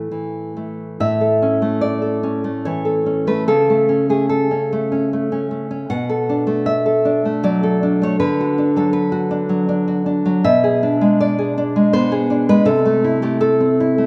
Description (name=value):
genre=romantic piece for solo classical guitar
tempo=65-83 BPM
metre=3/4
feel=rubato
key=A major, A minor from 10.4 s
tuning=A4 = 438 Hz
part: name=nylon-string guitar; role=solo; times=0.0-14.1 s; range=A2 to F#5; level=-18 LUFS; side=equal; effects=none
room=wet recital hall reverb, RT60 1.8 s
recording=none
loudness=-18 LUFS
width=mono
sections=0.0-1.0 A section; 1.0-14.1 B section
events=none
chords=0.0 A5; 1.0 A; 3.5 A/C#; 5.9 Bm7; 8.2 Bm/D; 10.4 E7/B; 12.7 Am/C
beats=0.11 | 1.01 1.83 2.65 | 3.48 4.30 5.11 | 5.89 6.66 7.45 | 8.21 8.94 9.68 | 10.44 11.19 11.93 | 12.66 13.41